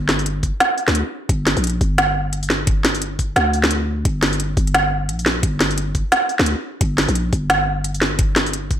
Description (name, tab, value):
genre	half-time drum and bass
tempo	174 BPM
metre	4/4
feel	swing 59% on 16ths, half-time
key	G minor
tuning	A4 = 440 Hz
part	growling 808-style bass	bass	0.0-8.8 s	G1 to D2	-22 LUFS	equal	none
part	organic electronic drum kit	drums	0.1-8.8 s	hi-hat, snare drum	-18 LUFS	equal	none
part	electronic kick drum	drums	0.4-8.8 s	none	-20 LUFS	equal	none
room	moderate plate reverb, RT60 1.1 s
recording	dreamy mix soaked in reverb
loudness	-16 LUFS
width	side -10 dB against mid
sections	0.0-8.8 A section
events	none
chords	none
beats	0.26 0.60 0.95 | 1.29 1.64 1.98 2.33 | 2.67 3.02 3.36 3.71 | 4.05 4.40 4.74 5.09 | 5.43 5.78 6.12 6.47 | 6.81 7.16 7.50 7.84 | 8.19 8.54